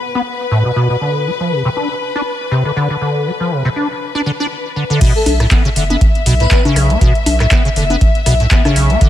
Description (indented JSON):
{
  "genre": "acid house",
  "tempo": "120 BPM",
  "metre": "4/4",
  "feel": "swing 56% on 16ths",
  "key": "B minor",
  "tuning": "A4 = 439 Hz",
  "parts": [
    { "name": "dark chamber string section", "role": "sustained chords", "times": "0.0-9.1 s", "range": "B4 to E5", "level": "-21 LUFS", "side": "left 5 dB", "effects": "sidechain pumping" },
    { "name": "acid bass, square", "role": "riff", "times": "0.2-9.1 s", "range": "A2 to D4", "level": "-16 LUFS", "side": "equal", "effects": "tube saturation, ensemble chorus, ping-pong delay" },
    { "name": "electro analog drum machine", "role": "drums", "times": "5.0-9.1 s", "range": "congas, crash cymbal, handclaps, hi-hat, rim click", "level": "-19 LUFS", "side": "left 2 dB", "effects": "none" },
    { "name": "electronic kick drum", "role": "drums", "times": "5.0-9.1 s", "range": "none", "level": "-12 LUFS", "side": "equal", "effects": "none" },
    { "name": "airy dreamy lead", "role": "melody", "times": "5.2-6.6 s", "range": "A4 to B4", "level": "-22 LUFS", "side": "left 2 dB", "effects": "chorus, ping-pong delay" },
    { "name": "round analog bass", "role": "bass", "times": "5.3-9.0 s", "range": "F#1 to B1", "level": "-15 LUFS", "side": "equal", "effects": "sidechain pumping" }
  ],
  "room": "light reverb, digital ambience",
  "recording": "none",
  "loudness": "-12 LUFS",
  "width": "side -12 dB against mid",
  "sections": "0.0-5.0 A section; 5.0-9.1 B section",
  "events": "drop 5.0-9.1",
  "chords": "none"
}